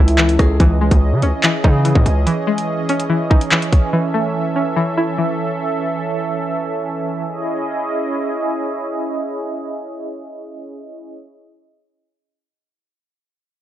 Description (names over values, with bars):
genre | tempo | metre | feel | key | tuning
hip hop, drill | 144 BPM | 4/4 | half-time | C# minor | A4 = 443 Hz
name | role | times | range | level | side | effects
flamenco guitar | melody | 0.0-0.6 s | E4 to G#4 | -23 LUFS | left 1 dB | low-pass filter, tape echo
string-like resonator pluck | accompaniment | 0.0-6.2 s | E3 to E4 | -20 LUFS | left 2 dB | chorus, low-pass filter
warm analog pad | sustained chords | 0.0-11.2 s | E3 to E5 | -21 LUFS | right 2 dB | chorus, tremolo, low-pass filter
distorted 808-style bass | bass | 0.0-2.3 s | C#2 to C#3 | -15 LUFS | equal | distortion
drill drum kit | drums | 0.1-3.8 s | handclaps, hi-hat, kick drum, rim click | -14 LUFS | equal | vintage 12-bit sampler grit
room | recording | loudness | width
light reverb | dark, warm production | -15 LUFS | side -12 dB against mid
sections
0.6-7.3 A section; 7.3-10.6 B section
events
none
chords
0.0 A/C#; 0.6 C#madd9; 3.9 A; 7.3 C#madd9